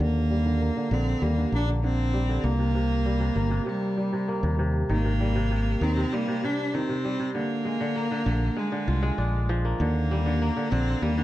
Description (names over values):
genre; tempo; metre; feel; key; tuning
folktronica; 98 BPM; 4/4; straight; Eb major; A4 = 438 Hz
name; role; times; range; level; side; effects
rich cello; melody; 0.0-11.2 s; G3 to D4; -28 LUFS; equal; plate reverb, ping-pong delay
kora; arpeggios; 0.0-11.2 s; C3 to F4; -30 LUFS; equal; low-pass filter, plate reverb
fingered electric bass; bass; 0.0-11.2 s; G1 to Eb2; -25 LUFS; equal; none
room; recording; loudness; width
moderate studio reverb, RT60 0.5 s; dark, warm production; -23 LUFS; side -15 dB against mid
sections
0.0-11.2 A section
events
filter sweep on kora 0.0-11.2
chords
0.0 Ebmaj7; 2.4 Cm7; 4.9 Abmaj9; 7.3 Bb7; 9.8 Ebmaj7